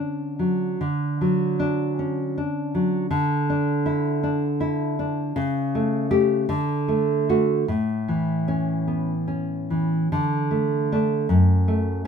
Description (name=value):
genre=romantic piece for solo classical guitar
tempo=46-54 BPM (dotted quarters)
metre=6/8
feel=rubato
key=D major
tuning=A4 = 439 Hz
part: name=nylon-string guitar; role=solo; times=0.0-12.1 s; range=F#2 to G4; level=-21 LUFS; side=equal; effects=none
room=light reverb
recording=close, detailed microphones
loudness=-21 LUFS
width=side -6 dB against mid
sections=0.8-12.1 A section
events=none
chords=0.0 D; 3.1 Dsus2; 5.4 A7/C#; 6.5 D; 7.7 A; 10.1 D5; 11.3 F#m